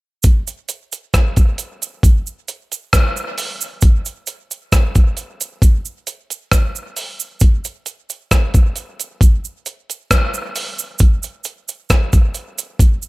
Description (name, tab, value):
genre	reggae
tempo	67 BPM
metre	4/4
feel	straight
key	none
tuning	none
part	dusty soul sampler-style drum kit	drums	0.2-13.0 s	hi-hat, kick drum, rim click	-13 LUFS	equal	overdrive
part	cabasa	percussion	0.2-13.1 s	none	-24 LUFS	right 8 dB	none
room	light reverb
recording	none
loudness	-14 LUFS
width	side -22 dB against mid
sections	0.2-13.1 A section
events	none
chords	none